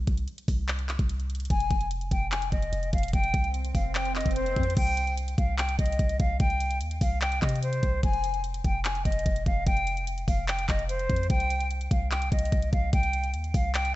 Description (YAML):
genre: hip hop, trap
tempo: 147 BPM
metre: 4/4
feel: half-time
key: C minor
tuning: A4 = 440 Hz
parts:
  - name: warm 808-style bass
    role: bass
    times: 0.0-13.9 s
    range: F1 to C3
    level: -29 LUFS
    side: equal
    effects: none
  - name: trap drum kit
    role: drums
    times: 0.1-13.9 s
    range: crash cymbal, handclaps, hi-hat, kick drum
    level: -28 LUFS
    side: equal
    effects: none
  - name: jazz flute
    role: melody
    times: 1.5-13.9 s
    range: C5 to Ab5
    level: -30 LUFS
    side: left 1 dB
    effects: tape echo
  - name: swell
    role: sound effects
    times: 3.5-4.8 s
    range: none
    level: -36 LUFS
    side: right 1 dB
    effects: none
room: little or no reverb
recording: nothing above 8.0 kHz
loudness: -25 LUFS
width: side -16 dB against mid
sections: 0.0-4.8 A section; 4.8-14.0 B section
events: break 0.0-1.5; swell 3.5-4.8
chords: 0.0 N.C.; 1.5 F5; 4.8 C5; 8.0 N.C.; 11.3 C5